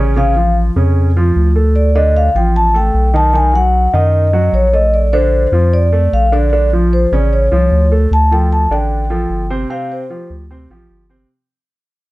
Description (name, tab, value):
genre	Afro-Cuban jazz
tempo	151 BPM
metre	4/4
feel	straight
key	unclear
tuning	A4 = 438 Hz
part	warm baby grand piano	accompaniment	0.0-11.3 s	C3 to D5	-18 LUFS	right 1 dB	none
part	round analog bass	bass	0.0-11.3 s	G1 to F#2	-13 LUFS	equal	none
part	vibraphone with soft mallets	melody	0.2-10.3 s	C5 to A5	-15 LUFS	equal	none
room	little or no reverb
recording	dark, warm production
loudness	-10 LUFS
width	side -18 dB against mid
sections	0.0-8.1 A section; 8.1-11.3 B section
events	fade-out 8.1-11.3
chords	0.2 Aaug; 1.8 Dm; 3.3 B7; 4.9 Bbmaj7; 7.3 Aaug; 8.1 G9sus4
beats	| 0.17 0.56 0.96 1.36 | 1.76 2.15 2.55 2.95 | 3.35 3.74 4.14 4.54 | 4.94 5.33 5.73 6.13 | 6.53 6.92 7.32 7.72 | 8.12 8.51 8.91 9.31 | 9.71 10.11 10.50 10.90